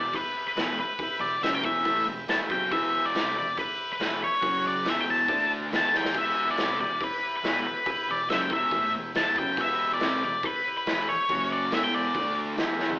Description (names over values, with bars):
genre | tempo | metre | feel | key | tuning
garage rock duo or trio | 140 BPM | 4/4 | straight | E minor | A4 = 441 Hz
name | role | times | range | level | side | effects
octave-fuzz lead guitar | melody | 0.0-12.3 s | B4 to A5 | -26 LUFS | left 1 dB | distortion
combo organ | sustained chords | 0.0-12.9 s | C#4 to F#5 | -35 LUFS | equal | none
fuzz guitar | riff | 0.0-13.0 s | E2 to E4 | -32 LUFS | equal | distortion
raw garage drum kit | drums | 0.1-13.0 s | crash cymbal, hi-hat, kick drum, snare drum, toms | -32 LUFS | equal | none
room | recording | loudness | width
moderate large studio reverb, RT60 1.2 s | band playing live in one room, AM radio sound | -24 LUFS | side -20 dB against mid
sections
0.0-13.0 A section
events
drum fill 5.9, 12.8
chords
0.0 Em; 4.4 F#5; 4.9 Em; 5.3 D5; 5.7 Em; 11.3 F#5; 11.7 Em; 12.2 D5; 12.6 Em